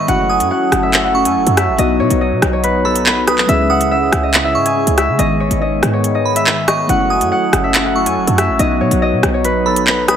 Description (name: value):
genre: hip hop, drill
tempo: 141 BPM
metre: 4/4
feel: half-time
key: C# minor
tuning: A4 = 440 Hz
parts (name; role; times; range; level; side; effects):
- concert harp; melody; 0.0-10.2 s; A4 to G#5; -17 LUFS; left 1 dB; dub echo
- glassy synth bell; second line; 0.0-10.2 s; B5 to D#6; -22 LUFS; right 4 dB; chorus, dub echo
- glassy digital keys; accompaniment; 0.0-10.2 s; D#3 to G#4; -20 LUFS; left 2 dB; chorus, dub echo
- sweeping resonant pad; sustained chords; 0.0-10.2 s; C#3 to A4; -22 LUFS; right 3 dB; chorus
- short 808-style bass; bass; 0.0-10.2 s; F#1 to C#3; -20 LUFS; equal; none
- drill drum kit; drums; 0.1-10.2 s; handclaps, hi-hat, rim click; -16 LUFS; equal; none
room: light reverb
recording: echo-heavy mix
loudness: -12 LUFS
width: side -8 dB against mid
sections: 0.0-3.5 A section; 3.5-10.2 A section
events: none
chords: 0.1 F#m7; 1.8 B; 3.5 C#m; 5.2 G#m; 6.9 F#m7; 8.6 B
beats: | 0.08 0.51 0.93 1.36 | 1.78 2.21 2.64 3.06 | 3.49 3.91 4.34 4.76 | 5.19 5.62 6.04 6.47 | 6.89 7.32 7.74 8.17 | 8.59 9.02 9.45 9.87